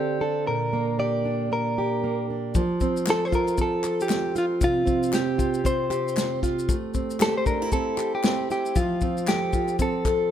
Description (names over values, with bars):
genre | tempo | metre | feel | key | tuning
acoustic pop | 116 BPM | 4/4 | swing 60% on 16ths | F major | A4 = 440 Hz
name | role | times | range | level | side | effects
direct-recorded clean electric guitar | melody | 0.0-10.3 s | F4 to D5 | -26 LUFS | left 1 dB | none
fingerpicked plugged-in steel-string acoustic guitar | accompaniment | 0.0-10.3 s | Bb2 to A4 | -25 LUFS | right 2 dB | none
unplugged drum kit | drums | 2.5-10.2 s | kick drum, shaker, snare drum | -27 LUFS | left 2 dB | none
group handclap | percussion | 3.1-10.2 s | none | -36 LUFS | left 4 dB | none
room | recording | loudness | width
moderate plate reverb, RT60 2.1 s | minimal, uncompressed stereo recording | -22 LUFS | side -10 dB against mid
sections
0.0-10.3 A section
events
none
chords
0.5 Bb6; 2.5 F; 4.6 Csus4; 6.7 Am7; 8.8 F